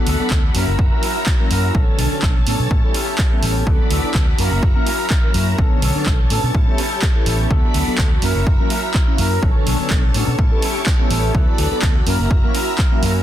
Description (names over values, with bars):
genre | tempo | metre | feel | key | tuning
filtered disco house | 125 BPM | 4/4 | straight | unclear | A4 = 440 Hz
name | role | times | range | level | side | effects
mellow synth brass | accompaniment | 0.0-13.2 s | D3 to C#5 | -24 LUFS | equal | chorus, phaser, sidechain pumping, low-pass filter
string machine, full ensemble | sustained chords | 0.0-13.2 s | D3 to B5 | -26 LUFS | equal | ensemble chorus, sidechain pumping, low-pass filter
electric guitar with an envelope filter | riff | 0.0-13.2 s | F#3 to A#4 | -27 LUFS | left 2 dB | sidechain pumping, low-pass filter
vintage muted fingered electric bass | bass | 0.1-13.2 s | F#1 to B2 | -20 LUFS | equal | sidechain pumping, low-pass filter
punchy analog drum machine | drums | 0.1-13.1 s | handclaps, hi-hat | -24 LUFS | right 2 dB | overdrive, sidechain pumping on hats
electronic kick drum | drums | 0.3-12.9 s | none | -17 LUFS | equal | none
room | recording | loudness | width
little or no reverb | dense, heavily limited modern master | -14 LUFS | side -12 dB against mid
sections
0.0-13.2 A section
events
none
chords
0.0 D6; 0.5 F#7; 1.7 Bm9; 2.7 A7; 3.7 D6; 4.4 F#7; 5.6 Bm9; 6.5 A7; 7.5 D6; 8.2 F#7; 9.4 Bm9; 10.4 A7; 11.3 D6; 12.1 F#7